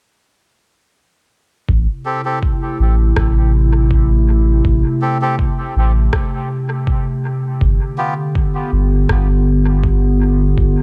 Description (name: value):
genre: ambient dub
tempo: 81 BPM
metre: 4/4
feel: swing 53% on 16ths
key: A minor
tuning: A4 = 441 Hz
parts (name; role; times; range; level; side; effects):
- warbly tape-like pad; sustained chords; 2.0-10.8 s; C3 to G4; -21 LUFS; equal; chorus, built-in reverb
- soft dub sub bass; bass; 1.7-10.8 s; G1 to A1; -16 LUFS; equal; none
- electronic kick drum; drums; 1.7-10.7 s; none; -21 LUFS; equal; studio reverb
- melodica; stabs; 2.1-8.1 s; B3 to A4; -27 LUFS; equal; dub echo
- electronic rim click; drums; 3.2-9.3 s; none; -30 LUFS; equal; studio reverb, dub echo
room: little or no reverb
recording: echo-heavy mix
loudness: -16 LUFS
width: mono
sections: 1.7-10.8 A section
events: none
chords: 1.7 Am7; 7.6 G7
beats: | 1.69 2.43 3.17 3.91 | 4.65 5.39 6.13 6.87 | 7.61 8.35 9.09 9.84 | 10.57